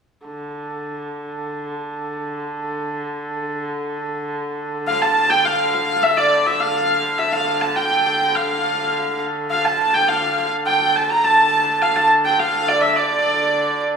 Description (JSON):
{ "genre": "medieval", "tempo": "104 BPM", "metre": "2/4", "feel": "straight", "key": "D minor", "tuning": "A4 = 440 Hz", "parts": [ { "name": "warm hurdy-gurdy", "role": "drone", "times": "0.3-14.0 s", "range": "D3", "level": "-25 LUFS", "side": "equal", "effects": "none" }, { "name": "rich hurdy-gurdy", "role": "melody", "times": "4.9-13.8 s", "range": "D5 to Bb5", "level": "-16 LUFS", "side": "right 1 dB", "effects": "none" } ], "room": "wet recital hall reverb, RT60 1.7 s", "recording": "small room ambience", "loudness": "-16 LUFS", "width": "side -6 dB against mid", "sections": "0.3-4.9 A section; 4.9-14.0 B section", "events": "none", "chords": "none", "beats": "| 0.26 0.84 | 1.41 1.99 | 2.57 3.14 | 3.72 4.30 | 4.87 5.45 | 6.03 6.60 | 7.18 7.76 | 8.33 8.91 | 9.49 10.06 | 10.64 11.21 | 11.79 12.37 | 12.94 13.52" }